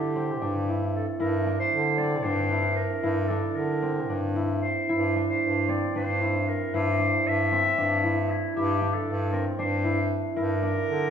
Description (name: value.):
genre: contemporary instrumental, chamber music in an uneven meter.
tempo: 229 BPM (eighths).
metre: 7/8.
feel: straight.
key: unclear.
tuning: A4 = 441 Hz.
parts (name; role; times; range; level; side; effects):
warm clarinet; melody; 0.0-11.1 s; E4 to E5; -28 LUFS; equal; none.
concert harp; arpeggios; 0.0-11.1 s; C4 to E4; -28 LUFS; right 2 dB; none.
warm bass clarinet; bass; 0.0-11.1 s; G2 to D3; -28 LUFS; left 1 dB; none.
room: wet recital hall reverb, RT60 1.4 s.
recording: heard from further back in the room.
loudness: -23 LUFS.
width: side -7 dB against mid.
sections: 0.0-11.1 A section.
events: none.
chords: 0.0 Cadd9/G.